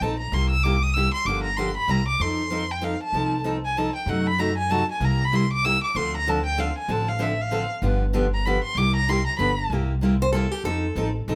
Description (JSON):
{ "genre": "acoustic string swing (jazz manouche)", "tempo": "192 BPM", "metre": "3/4", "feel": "swing 61% on 8ths", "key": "C mixolydian", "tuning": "A4 = 440 Hz", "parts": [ { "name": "warm violin", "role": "melody", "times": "0.0-9.6 s", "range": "E5 to E6", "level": "-27 LUFS", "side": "equal", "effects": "none" }, { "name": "picked steel-string acoustic guitar", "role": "accompaniment", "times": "0.0-11.3 s", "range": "C3 to A4", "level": "-29 LUFS", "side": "equal", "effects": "none" }, { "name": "upright bass", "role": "bass", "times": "0.0-11.3 s", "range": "G1 to F#2", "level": "-28 LUFS", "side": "equal", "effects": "none" }, { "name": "picked steel-string acoustic guitar", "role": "second line", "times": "10.2-11.1 s", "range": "G4 to C5", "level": "-29 LUFS", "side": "equal", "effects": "none" } ], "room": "light reverb", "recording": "none", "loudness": "-24 LUFS", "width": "mono", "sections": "0.0-9.7 A section; 9.7-11.3 A section", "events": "violin solo 0.0-9.7; steel-string acoustic guitar solo 9.7-11.3", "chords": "0.3 C7; 1.3 Gm7; 1.9 C7; 2.2 F7; 4.1 F#dim7; 5.0 C7; 6.0 Dm7; 7.8 G7; 8.8 C7; 9.4 G7; 9.7 C7; 10.7 F7" }